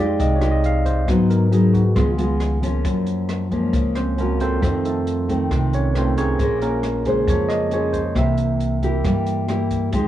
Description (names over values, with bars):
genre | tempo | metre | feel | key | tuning
bossa nova | 136 BPM | 4/4 | straight | F minor | A4 = 441 Hz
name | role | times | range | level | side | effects
barky tine electric piano | accompaniment | 0.0-10.1 s | Db3 to F5 | -23 LUFS | right 2 dB | none
nylon-string guitar | accompaniment | 0.0-10.1 s | F2 to C5 | -22 LUFS | left 2 dB | none
upright bass | bass | 0.0-10.1 s | Bb1 to Ab2 | -22 LUFS | equal | none
open jazz drum kit | drums | 0.2-10.0 s | hi-hat, kick drum, rim click | -27 LUFS | equal | none
room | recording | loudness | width
light reverb | worn, warbling old tape, cassette tape, warbly pitch drift | -17 LUFS | side -12 dB against mid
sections
0.0-10.1 A section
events
tine electric piano solo 0.0-10.1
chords
0.0 Fm9; 1.1 Abm7; 2.0 Db7; 2.9 Gbmaj7; 4.6 F7; 6.4 Bbm9; 8.2 C7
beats
0.19 0.64 | 1.08 1.52 1.97 2.41 | 2.85 3.29 3.74 4.18 | 4.62 5.06 5.50 5.95 | 6.39 6.83 7.27 7.72 | 8.16 8.60 9.04 9.48 | 9.93